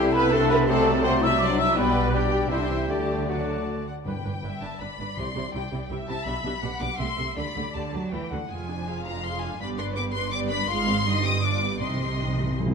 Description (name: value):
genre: quick classical-period movement for symphony orchestra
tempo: 163 BPM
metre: 3/4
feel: straight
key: G major, C minor from 8.5 s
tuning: A4 = 440 Hz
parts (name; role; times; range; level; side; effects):
- rich studio violin section; melody; 0.0-12.6 s; F#5 to Eb6; -32 LUFS; left 5 dB; none
- clear oboe; second line; 0.0-3.9 s; C5 to E5; -35 LUFS; equal; none
- concert flute; second line; 0.0-3.7 s; D5 to E6; -30 LUFS; left 4 dB; none
- mellow clarinet; second line; 0.0-3.8 s; F#3 to E4; -29 LUFS; left 3 dB; none
- rich studio violin section; second line; 0.0-12.7 s; A4 to A5; -35 LUFS; left 4 dB; none
- mellow bassoon; accompaniment; 0.0-3.9 s; F#3 to A3; -31 LUFS; equal; none
- rich studio viola section; accompaniment; 0.0-12.7 s; G3 to E5; -29 LUFS; right 1 dB; none
- mellow French horn section; sustained chords; 0.0-3.7 s; D3 to E4; -29 LUFS; left 5 dB; none
- rich studio cello section; bass; 0.0-12.7 s; F2 to F#3; -31 LUFS; right 3 dB; none
- rich studio double bass section; bass; 0.0-12.7 s; F1 to D2; -32 LUFS; right 4 dB; none
- timpani; percussion; 4.1-5.7, 11.8-12.7 s; G2 to C3; -32 LUFS; equal; none
room: moderate scoring stage reverb, RT60 1.7 s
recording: dark, warm production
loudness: -23 LUFS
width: side -6 dB against mid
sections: 0.0-4.1 A section; 4.1-12.7 B section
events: timpani fill 11.8-12.7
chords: 0.0 Am7/C; 0.7 D7/C; 1.8 G/B; 2.5 C; 2.9 D; 4.1 G; 5.2 C; 6.3 G/B; 7.0 Am7; 7.4 Dsus4; 8.1 D; 8.5 Ddim/F; 9.6 G; 10.7 Fm/Ab; 11.1 Cm/G; 11.4 G7; 11.8 Cm